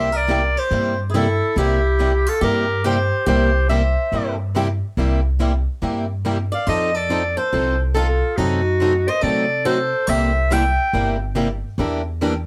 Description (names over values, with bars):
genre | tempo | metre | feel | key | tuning
acoustic string swing (jazz manouche) | 141 BPM | 4/4 | swing 64% on 8ths | C mixolydian | A4 = 440 Hz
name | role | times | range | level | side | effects
clear clarinet | melody | 0.0-11.2 s | F#4 to G5 | -23 LUFS | equal | plate reverb
picked swing-style acoustic guitar | second line | 0.0-11.2 s | D#4 to E5 | -31 LUFS | equal | none
picked plugged-in steel-string acoustic guitar | accompaniment | 0.0-12.3 s | C3 to A4 | -26 LUFS | equal | none
picked swing-style acoustic guitar | accompaniment | 0.0-12.3 s | C3 to Bb4 | -29 LUFS | equal | none
upright bass | bass | 0.0-12.5 s | G1 to C3 | -24 LUFS | equal | none
room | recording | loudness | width
moderate small room ambience, RT60 0.5 s | none | -19 LUFS | mono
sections
0.0-12.5 A section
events
none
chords
0.0 C7; 6.7 F7; 8.4 F#dim7; 10.1 C7; 11.8 Em7b5